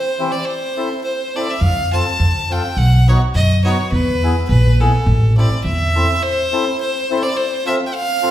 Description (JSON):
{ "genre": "alpine folk, alpine dance band", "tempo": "105 BPM", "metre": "2/4", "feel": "swing 54% on 8ths", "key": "A minor", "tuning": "A4 = 443 Hz", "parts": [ { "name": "clear fiddle", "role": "melody", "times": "0.0-8.3 s", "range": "A4 to A5", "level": "-20 LUFS", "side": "equal", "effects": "slapback echo" }, { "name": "mellow accordion", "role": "accompaniment", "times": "0.2-8.3 s", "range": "E3 to A4", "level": "-23 LUFS", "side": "left 1 dB", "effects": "none" }, { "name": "upright bass", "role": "bass", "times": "1.6-6.0 s", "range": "A1 to F#2", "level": "-14 LUFS", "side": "equal", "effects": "none" } ], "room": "wet recital hall reverb, RT60 1.4 s", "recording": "heard from further back in the room", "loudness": "-14 LUFS", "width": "side -12 dB against mid", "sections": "0.0-6.2 A section; 6.2-8.3 A section", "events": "none", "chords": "0.5 Am; 1.6 F; 2.8 B; 3.9 E; 5.1 Am; 7.4 F" }